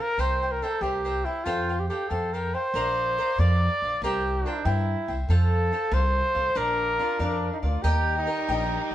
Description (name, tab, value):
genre	mexican folk, mariachi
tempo	94 BPM (dotted quarters)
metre	6/8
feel	straight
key	Bb major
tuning	A4 = 440 Hz
part	warm trumpet	melody	0.0-7.6 s	E4 to D5	-26 LUFS	equal	none
part	cavaquinho	accompaniment	0.0-8.9 s	D4 to G5	-31 LUFS	left 1 dB	none
part	upright bass	bass	0.2-8.9 s	Bb1 to G2	-26 LUFS	equal	none
part	mellow trumpet	second line	4.4-8.9 s	D4 to G4	-31 LUFS	right 3 dB	none
part	rich studio violin section	sustained chords	7.8-8.9 s	G3 to Bb4	-33 LUFS	equal	none
room	moderate stone room reverb, RT60 1.0 s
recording	band playing live in one room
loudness	-23 LUFS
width	side -12 dB against mid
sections	0.0-2.7 A section; 2.7-8.9 B section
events	none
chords	0.2 C7; 1.5 Fadd9; 2.7 Bbadd9; 4.0 C7; 5.3 F; 6.6 Bb; 7.8 Eb